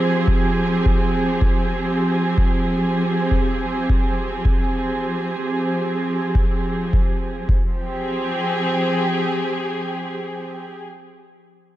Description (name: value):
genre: ambient dub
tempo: 79 BPM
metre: 4/4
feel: swing 53% on 16ths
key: F minor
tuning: A4 = 439 Hz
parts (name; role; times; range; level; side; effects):
- dark studio string section; sustained chords; 0.0-10.9 s; F3 to Ab4; -20 LUFS; right 1 dB; none
- shaker; drums; 0.1-7.5 s; none; barely audible; none; none
- electronic kick drum; drums; 0.3-7.7 s; none; -20 LUFS; equal; none
room: moderate concert hall reverb, RT60 2.4 s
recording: none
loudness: -18 LUFS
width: side -14 dB against mid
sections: 0.0-7.5 A section; 7.5-10.5 B section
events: none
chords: 0.0 Fmadd9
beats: 0.66 | 1.42 2.17 2.93 3.69 | 4.45 5.21 5.97 6.73 | 7.49 8.25 9.01 9.77